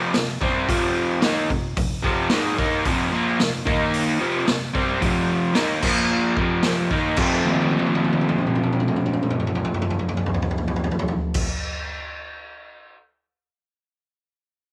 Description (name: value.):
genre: garage rock duo or trio.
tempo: 111 BPM.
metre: 4/4.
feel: straight.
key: F major.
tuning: A4 = 439 Hz.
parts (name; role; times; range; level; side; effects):
crunchy overdriven guitar; riff; 0.0-11.5 s; F2 to Eb4; -24 LUFS; equal; none.
raw garage drum kit; drums; 0.1-12.9 s; crash cymbal, hi-hat, kick drum, snare drum, toms; -26 LUFS; equal; none.
room: moderate echo chamber reverb, RT60 1.7 s, studio ambience.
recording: none.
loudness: -22 LUFS.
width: mono.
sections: 0.0-7.2 A section; 7.2-11.5 B section.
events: drum fill 7.5-11.4.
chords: 0.0 F5; 3.7 Eb5; 4.2 F5; 5.8 Bb5; 6.4 F5; 7.2 F.